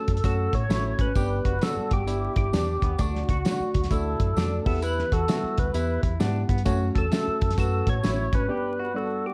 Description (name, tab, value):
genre	uptempo 1960s-style soul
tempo	131 BPM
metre	4/4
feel	swing 64% on 8ths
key	unclear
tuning	A4 = 439 Hz
part	percussive tonewheel organ	melody	0.0-9.3 s	F#4 to C#5	-32 LUFS	equal	overdrive, slow rotary speaker, plate reverb
part	reed electric piano	accompaniment	0.0-9.3 s	G2 to F#5	-34 LUFS	equal	none
part	semi-hollow electric guitar	riff	0.0-9.3 s	B3 to A4	-38 LUFS	equal	none
part	vintage muted fingered electric bass	bass	0.1-8.5 s	F#1 to A2	-30 LUFS	equal	none
part	cloth-damped thuddy drum kit	drums	0.1-8.4 s	hi-hat, kick drum, snare drum	-29 LUFS	equal	none
part	tambourine	percussion	0.2-8.2 s	none	-50 LUFS	equal	none
room	moderate large studio reverb, RT60 0.8 s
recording	dark, warm production, vinyl crackle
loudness	-25 LUFS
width	mono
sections	0.0-9.3 A section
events	break 8.5-9.3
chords	0.0 F#m; 1.2 G; 3.0 D; 4.6 Em; 6.7 F#m; 8.5 G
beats	0.24 0.70 | 1.16 1.62 2.07 2.53 | 2.99 3.45 3.91 4.37 | 4.83 5.29 5.74 6.20 | 6.66 7.12 7.58 8.04 | 8.50 8.95